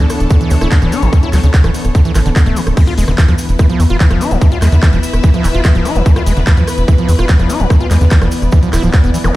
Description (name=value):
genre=psychedelic trance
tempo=146 BPM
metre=4/4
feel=straight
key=unclear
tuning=A4 = 440 Hz
part: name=evolving wavetable pad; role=sustained chords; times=0.0-9.4 s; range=E3 to B3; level=-22 LUFS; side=left 1 dB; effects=chorus, built-in reverb, sidechain pumping
part: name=overdriven acid bass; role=riff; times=0.0-9.3 s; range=C#3 to F4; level=-18 LUFS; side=moving between left 4 dB and right 4 dB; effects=distortion, auto-pan, sidechain pumping, digital delay
part: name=tight sequencer bass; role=bass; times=0.0-9.3 s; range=D1 to E2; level=-12 LUFS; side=equal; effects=none
part: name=drum and bass drum kit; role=drums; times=0.0-9.3 s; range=crash cymbal, handclaps, hi-hat, rim click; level=-22 LUFS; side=equal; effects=overdrive
part: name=cabasa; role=percussion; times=0.0-9.3 s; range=none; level=-33 LUFS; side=right 2 dB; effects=none
part: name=warm studio string section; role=texture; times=0.0-9.4 s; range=D4 to E5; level=-24 LUFS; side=left 2 dB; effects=sidechain pumping
part: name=electronic kick drum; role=drums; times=0.3-9.0 s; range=none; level=-9 LUFS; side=equal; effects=overdrive
part: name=zap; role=sound effects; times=9.2-9.3 s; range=none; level=-19 LUFS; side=right 1 dB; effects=none
room=digital ambience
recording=played on a big sound system in a bare room, stone room reverb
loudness=-9 LUFS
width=side -17 dB against mid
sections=0.0-9.4 A section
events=none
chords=0.0 D5; 2.8 E5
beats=0.30 0.72 | 1.13 1.54 1.95 2.36 | 2.77 3.18 3.59 4.00 | 4.42 4.83 5.24 5.65 | 6.06 6.47 6.88 7.29 | 7.70 8.11 8.53 8.94 | 9.35